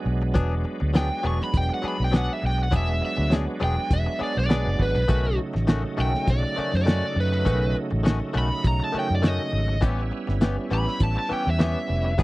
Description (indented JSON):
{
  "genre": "straight-eighth soul blues",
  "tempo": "101 BPM",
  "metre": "4/4",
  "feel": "swing 54% on 16ths",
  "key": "E mixolydian",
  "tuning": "A4 = 439 Hz",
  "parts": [
    { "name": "bright tonewheel organ", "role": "accompaniment", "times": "0.0-12.2 s", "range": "C#3 to E4", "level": "-30 LUFS", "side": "right 3 dB", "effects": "slow rotary speaker, overdrive, chorus vibrato" },
    { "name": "direct-recorded clean electric guitar", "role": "stabs", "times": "0.1-12.2 s", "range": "D#3 to G#4", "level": "-32 LUFS", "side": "left 4 dB", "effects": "spring reverb" },
    { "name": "vintage muted fingered electric bass", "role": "bass", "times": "0.1-12.2 s", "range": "E1 to F#2", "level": "-24 LUFS", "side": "equal", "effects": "none" },
    { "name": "cloth-damped thuddy drum kit", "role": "drums", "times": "0.4-12.2 s", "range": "hi-hat, kick drum, snare drum", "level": "-22 LUFS", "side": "equal", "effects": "none" },
    { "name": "overdriven electric guitar", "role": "melody", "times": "1.0-12.2 s", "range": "B4 to C#6", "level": "-28 LUFS", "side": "equal", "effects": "none" }
  ],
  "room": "small room ambience",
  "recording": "dry, close 1970s-style studio recording",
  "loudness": "-21 LUFS",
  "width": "side -19 dB against mid",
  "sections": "0.0-12.2 A section",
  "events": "none",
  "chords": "0.0 E9; 5.1 B9; 9.8 A9"
}